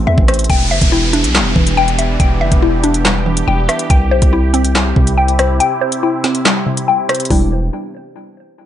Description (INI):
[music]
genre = hip hop, drill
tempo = 141 BPM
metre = 4/4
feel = half-time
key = E minor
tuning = A4 = 440 Hz
[part]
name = sweeping resonant pad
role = sustained chords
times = 0.0-7.5 s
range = C3 to G4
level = -22 LUFS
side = right 1 dB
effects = chorus, low-pass filter
[part]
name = mallet-like synth pluck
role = arpeggios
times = 0.0-7.5 s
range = C3 to G5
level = -16 LUFS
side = left 2 dB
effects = chorus, phaser, low-pass filter, tape echo
[part]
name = distorted 808-style bass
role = bass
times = 0.0-7.7 s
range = E1 to E2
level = -16 LUFS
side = equal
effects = distortion
[part]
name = drill drum kit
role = drums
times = 0.2-7.4 s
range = handclaps, hi-hat, kick drum, rim click, snare drum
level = -15 LUFS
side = equal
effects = overdrive
[part]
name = downlifter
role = sound effects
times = 0.5-3.9 s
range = none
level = -22 LUFS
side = equal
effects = none
[sound]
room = light reverb, digital ambience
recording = nothing above 10.4 kHz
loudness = -11 LUFS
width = side -11 dB against mid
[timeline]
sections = 0.5-7.3 A section; 7.3-8.7 B section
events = filter sweep 0.5-7.3; break 5.6-7.3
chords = 0.5 Em7; 3.9 C; 7.3 Em7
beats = 0.07 | 0.50 0.92 1.35 1.77 | 2.20 2.62 3.05 3.48 | 3.90 4.33 4.75 5.18 | 5.60 6.03 6.45 6.88 | 7.30